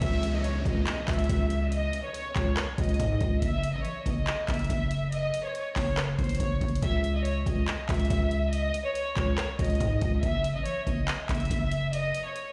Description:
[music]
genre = hip hop, trap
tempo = 141 BPM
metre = 4/4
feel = half-time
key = C# minor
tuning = A4 = 441 Hz
[part]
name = warm chamber violin section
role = melody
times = 0.0-12.5 s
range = B#4 to E5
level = -35 LUFS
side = equal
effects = low-pass filter, digital delay
[part]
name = growling 808-style bass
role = bass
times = 0.0-12.1 s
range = F#1 to G#2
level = -30 LUFS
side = equal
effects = none
[part]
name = trap drum kit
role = drums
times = 0.0-12.5 s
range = handclaps, hi-hat, kick drum, rim click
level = -33 LUFS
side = equal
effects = vintage 12-bit sampler grit
[part]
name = downlifter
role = sound effects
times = 0.0-3.4 s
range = none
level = -42 LUFS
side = equal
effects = none
[sound]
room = digital ambience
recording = played on a big sound system in a bare room, stone room reverb, studio reverb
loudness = -28 LUFS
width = mono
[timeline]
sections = 0.0-12.5 A section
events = none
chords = 0.0 C#m; 3.4 F#5; 6.8 C#m; 10.2 F#5

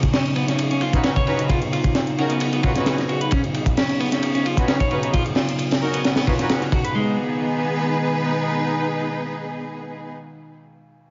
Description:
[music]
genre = breakbeat, breaks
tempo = 132 BPM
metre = 4/4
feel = swing 54% on 16ths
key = G# minor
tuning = A4 = 440 Hz
[part]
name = warbly tape-like pad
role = sustained chords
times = 0.0-10.1 s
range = B2 to D#4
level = -29 LUFS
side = equal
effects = chorus, built-in reverb, sidechain pumping
[part]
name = crunchy breakbeat drum kit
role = drums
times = 0.0-6.8 s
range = hi-hat, kick drum, ride cymbal, snare drum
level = -24 LUFS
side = equal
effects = none
[part]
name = electronic hi-hat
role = drums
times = 0.0-6.9 s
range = none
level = -40 LUFS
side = equal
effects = overdrive
[part]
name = clean electric guitar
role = riff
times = 0.1-7.2 s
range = G#3 to C#5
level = -28 LUFS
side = equal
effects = tube saturation, low-pass filter, digital delay
[part]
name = rich studio string section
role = stabs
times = 0.9-10.1 s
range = B3 to B4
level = -27 LUFS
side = equal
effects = low-pass filter, digital delay
[sound]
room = light reverb, studio reverb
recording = nothing above 7.5 kHz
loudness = -21 LUFS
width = mono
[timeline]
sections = 0.0-7.0 A section; 7.0-10.6 B section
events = none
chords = 0.0 C#9sus4; 7.0 G#m

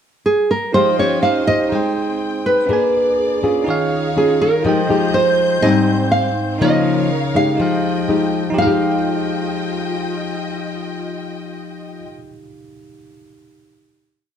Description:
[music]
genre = bossa nova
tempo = 122 BPM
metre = 4/4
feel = straight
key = F minor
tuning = A4 = 443 Hz
[part]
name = nylon-string guitar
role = melody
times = 0.3-12.1 s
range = Ab4 to F5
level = -17 LUFS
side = right 1 dB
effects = none
[part]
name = bell-like tine electric piano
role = accompaniment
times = 0.7-14.4 s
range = D4 to Ab5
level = -24 LUFS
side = right 4 dB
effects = none
[part]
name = nylon-string guitar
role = accompaniment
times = 0.7-12.2 s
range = Ab2 to C5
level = -19 LUFS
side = left 3 dB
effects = none
[part]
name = warm symphonic string section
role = sustained chords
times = 0.7-12.1 s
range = C4 to G6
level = -27 LUFS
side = left 1 dB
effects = none
[sound]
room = light reverb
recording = dark, warm production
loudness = -15 LUFS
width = side -8 dB against mid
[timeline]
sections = 0.0-0.7 pickup bar; 0.7-8.6 A section; 8.6-12.5 final chord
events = none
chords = 0.0 N.C.; 0.7 Fm9; 1.2 Eb13; 1.7 Abmaj7; 2.7 Bb7b9; 3.7 Eb9sus4; 4.6 Fm9; 5.6 Abmaj7; 6.6 Db69; 7.6 Fm9

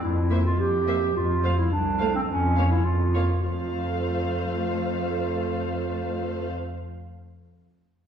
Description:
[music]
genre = cinematic, playful, whimsical film cue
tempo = 105 BPM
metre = 2/4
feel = straight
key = F major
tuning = A4 = 441 Hz
[part]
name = dark clarinet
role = second line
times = 0.0-6.5 s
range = C4 to G4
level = -28 LUFS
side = right 2 dB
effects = none
[part]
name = muted chamber cello section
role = bass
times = 0.0-6.5 s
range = C2 to F2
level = -26 LUFS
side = equal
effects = none
[part]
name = muted chamber violin section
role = melody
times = 0.3-6.5 s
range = E5 to F5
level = -36 LUFS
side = left 3 dB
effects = none
[part]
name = muted chamber violin section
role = second line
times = 0.3-6.5 s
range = C5 to Db5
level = -36 LUFS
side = left 2 dB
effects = none
[part]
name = muted symphonic viola section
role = accompaniment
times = 0.3-6.5 s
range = A3 to Bb3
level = -33 LUFS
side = right 2 dB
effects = none
[sound]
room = wet scoring stage reverb, RT60 1.6 s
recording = heard from further back in the room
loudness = -23 LUFS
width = side -8 dB against mid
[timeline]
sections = 0.0-3.4 A section; 3.4-5.7 B section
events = none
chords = 0.0 C7/F (rootless); 1.1 F; 2.3 Bbm/F; 3.4 F

